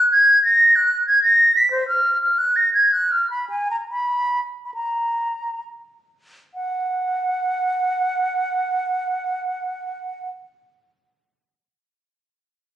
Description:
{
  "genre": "classical, baroque-style fantasia for unaccompanied flute",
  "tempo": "62-95 BPM",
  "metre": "3/4",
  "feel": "rubato",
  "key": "F# major",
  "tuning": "A4 = 437 Hz",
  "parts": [
    { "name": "concert flute", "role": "solo", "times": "0.0-10.3 s", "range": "B#4 to B6", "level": "-17 LUFS", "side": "equal", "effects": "none" }
  ],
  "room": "moderate stone room reverb, RT60 1.4 s",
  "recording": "recorded on a phone in the room, studio reverb, compression",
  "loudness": "-17 LUFS",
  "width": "side -11 dB against mid",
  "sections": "0.0-6.6 A section; 6.6-11.9 B section",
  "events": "slowing down 0.8-6.6",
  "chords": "none"
}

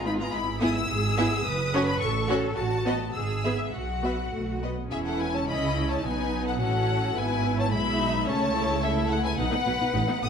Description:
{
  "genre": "quick classical-period movement for string orchestra",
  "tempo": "107 BPM",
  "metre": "2/4",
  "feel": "rubato",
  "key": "E major",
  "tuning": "A4 = 441 Hz",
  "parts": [
    { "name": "clear studio violin section", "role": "melody", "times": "0.0-10.3 s", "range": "E5 to E6", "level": "-30 LUFS", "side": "left 5 dB", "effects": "none" },
    { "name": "rich studio violin section", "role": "second line", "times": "0.0-10.3 s", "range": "G#4 to F#5", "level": "-33 LUFS", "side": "left 1 dB", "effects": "none" },
    { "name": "warm studio viola section", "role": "accompaniment", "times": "0.0-10.3 s", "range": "F#3 to G#4", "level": "-29 LUFS", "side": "right 1 dB", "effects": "none" },
    { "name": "rich studio cello section", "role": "bass", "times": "0.0-10.3 s", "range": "E2 to B4", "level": "-33 LUFS", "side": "right 1 dB", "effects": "none" },
    { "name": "rich studio double bass section", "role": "bass", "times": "0.0-10.3 s", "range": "E1 to C#2", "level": "-30 LUFS", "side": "right 3 dB", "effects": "none" }
  ],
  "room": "moderate scoring stage reverb, RT60 1.8 s",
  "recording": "dark, warm production",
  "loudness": "-24 LUFS",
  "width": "side -7 dB against mid",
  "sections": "0.0-4.9 A section; 4.9-10.3 B section",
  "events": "none",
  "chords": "0.3 E/G#; 1.5 F#m; 2.0 F#m/A; 2.6 B7/A; 3.1 E/G#; 3.7 Bsus4; 4.3 B; 4.9 E69; 5.5 C#m9; 6.0 B; 6.6 A6; 7.2 E/G#; 8.3 A/C#; 9.4 B"
}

